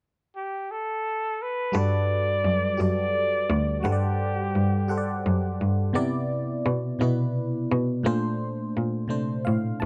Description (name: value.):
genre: slow six-eight R&B.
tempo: 57 BPM (dotted quarters).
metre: 6/8.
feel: straight.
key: G major.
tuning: A4 = 440 Hz.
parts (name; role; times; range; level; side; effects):
clear flugelhorn; melody; 0.4-5.6 s; F#4 to D5; -30 LUFS; equal; digital delay.
FM electric piano; accompaniment; 1.7-9.9 s; Bb2 to A5; -30 LUFS; equal; chorus, phaser.
bright cello; bass; 1.7-9.9 s; D2 to C3; -28 LUFS; equal; none.
room: light reverb, small room ambience.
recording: dark, warm production.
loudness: -26 LUFS.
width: mono.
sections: 0.0-1.7 A section; 1.7-9.9 B section.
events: FM electric piano fill 9.1-9.9.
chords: 0.0 N.C.; 1.7 Gmaj9; 5.9 Cmaj9; 8.0 Bbmaj9.